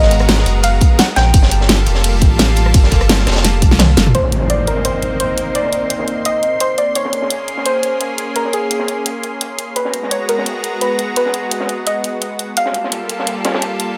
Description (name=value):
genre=liquid drum and bass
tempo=171 BPM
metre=4/4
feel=straight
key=unclear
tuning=A4 = 440 Hz
part: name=soft round pluck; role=melody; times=0.0-14.0 s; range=Ab4 to G5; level=-21 LUFS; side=equal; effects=analog chorus, tape echo
part: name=lush unison pad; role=sustained chords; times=0.0-14.0 s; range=G3 to C6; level=-24 LUFS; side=equal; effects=chorus, sidechain pumping
part: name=saturated sub bass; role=bass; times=0.0-4.1 s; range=F1 to C2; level=-16 LUFS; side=equal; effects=none
part: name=crunchy breakbeat drum kit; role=drums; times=0.0-13.9 s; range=hi-hat, snare drum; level=-26 LUFS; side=equal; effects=high-pass filter on hats, low-pass filter on hats, studio reverb, high-pass filter on snare, low-pass filter on snare, high-pass filter on room, low-pass filter on room
part: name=pop drum kit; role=drums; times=0.1-13.9 s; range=hi-hat, ride cymbal, rim click, snare drum, toms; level=-19 LUFS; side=equal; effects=studio reverb
part: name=electronic kick drum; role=drums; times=0.8-3.7 s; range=none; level=-13 LUFS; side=equal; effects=studio reverb
part: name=impact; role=sound effects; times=4.1-5.6 s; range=none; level=-24 LUFS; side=equal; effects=none
room=light reverb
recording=none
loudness=-15 LUFS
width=mono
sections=0.0-4.1 A section; 4.1-14.0 B section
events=drop 0.0-4.1; drum fill 3.4-4.1; kick drops out 3.8-4.1; impact 4.1-5.6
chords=0.0 Abm9; 1.3 Gm9; 4.1 Cm9; 7.0 Bbm9; 9.8 Abm9; 12.6 Gm9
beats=0.29 0.64 0.99 | 1.34 1.69 2.04 2.39 | 2.74 3.10 3.45 3.80 | 4.15 4.50 4.85 5.20 | 5.55 5.90 6.25 6.60 | 6.95 7.30 7.66 8.01 | 8.36 8.71 9.06 9.41 | 9.76 10.11 10.46 10.81 | 11.16 11.52 11.87 12.22 | 12.57 12.92 13.27 13.62 | 13.97